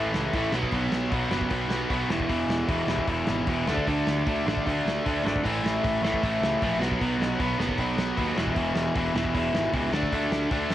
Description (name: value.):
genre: punk rock.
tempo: 153 BPM.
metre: 4/4.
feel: straight.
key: unclear.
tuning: A4 = 439 Hz.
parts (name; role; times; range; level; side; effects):
crunchy overdriven guitar; riff; 0.0-10.7 s; E2 to D4; -30 LUFS; right 6 dB; cassette tape.
overdriven electric guitar; riff; 0.0-10.7 s; E2 to D4; -28 LUFS; left 4 dB; cassette tape.
sludgy distorted guitar; riff; 0.0-10.7 s; E2 to D4; -34 LUFS; right 2 dB; overdrive, cassette tape.
fuzz picked electric bass; bass; 0.0-10.7 s; E1 to D#2; -32 LUFS; equal; overdrive.
loose indie drum kit; drums; 0.1-10.7 s; crash cymbal, hi-hat, kick drum, snare drum; -32 LUFS; equal; cassette tape.
room: small room ambience.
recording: home recording on cassette.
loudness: -23 LUFS.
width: side -12 dB against mid.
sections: 0.0-10.7 A section.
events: none.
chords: 0.0 A; 0.5 B5; 2.1 E5; 3.7 D5; 5.4 A5; 6.8 B5; 8.4 E5; 9.9 D5.